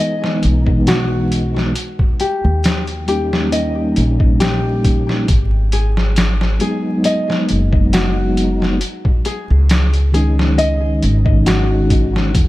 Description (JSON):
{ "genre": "trip hop", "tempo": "68 BPM", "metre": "4/4", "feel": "swing 54% on 16ths", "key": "unclear", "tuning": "A4 = 440 Hz", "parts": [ { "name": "mellow tonewheel organ", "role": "accompaniment", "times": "0.0-12.3 s", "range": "D#3 to D#4", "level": "-19 LUFS", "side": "equal", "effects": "chorus vibrato, slow rotary speaker, harmonic tremolo, vintage 12-bit sampler grit, tape echo" }, { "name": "nylon-string guitar", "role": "arpeggios", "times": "0.0-12.3 s", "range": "F#4 to D#5", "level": "-22 LUFS", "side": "left 2 dB", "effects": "vintage 12-bit sampler grit, ping-pong delay" }, { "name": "trip hop sampler-style drum kit", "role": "drums", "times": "0.2-12.5 s", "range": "hi-hat, kick drum, snare drum", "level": "-17 LUFS", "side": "equal", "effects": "none" }, { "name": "upright bass", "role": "bass", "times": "0.4-12.5 s", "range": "F#1 to E2", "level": "-16 LUFS", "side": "equal", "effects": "tube saturation" } ], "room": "digital ambience", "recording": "vinyl crackle", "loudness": "-13 LUFS", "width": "side -17 dB against mid", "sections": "0.0-12.5 A section", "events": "none", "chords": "0.0 Emaj7; 1.8 D#7; 5.3 G#m7; 8.8 C#sus2" }